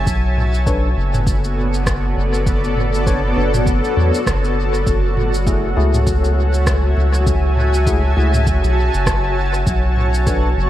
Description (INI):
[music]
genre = ambient dub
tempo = 100 BPM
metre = 4/4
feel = swing 57% on 16ths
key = unclear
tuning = A4 = 439 Hz
[part]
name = granular cloud pad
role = sustained chords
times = 0.0-10.7 s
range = B3 to A5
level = -20 LUFS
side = equal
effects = built-in reverb, analog chorus
[part]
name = soft dub sub bass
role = bass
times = 0.0-10.7 s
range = F#1 to E2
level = -17 LUFS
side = equal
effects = none
[part]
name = electronic kick drum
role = drums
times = 0.1-10.4 s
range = none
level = -20 LUFS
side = equal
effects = overdrive
[part]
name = organic electronic drum kit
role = drums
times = 0.1-10.4 s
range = rim click, shaker, toms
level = -26 LUFS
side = equal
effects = dub echo
[part]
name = tine electric piano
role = stabs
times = 0.7-10.5 s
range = A3 to C#5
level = -26 LUFS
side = left 3 dB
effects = lush chorus, dub echo
[sound]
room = light reverb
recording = vinyl crackle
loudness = -14 LUFS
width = side -13 dB against mid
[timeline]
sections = 0.0-10.7 A section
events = none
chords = 0.1 Bm9; 4.9 F#m9; 9.7 Bm9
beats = | 0.07 0.67 1.27 1.87 | 2.47 3.07 3.67 4.27 | 4.87 5.47 6.07 6.67 | 7.27 7.87 8.47 9.07 | 9.67 10.27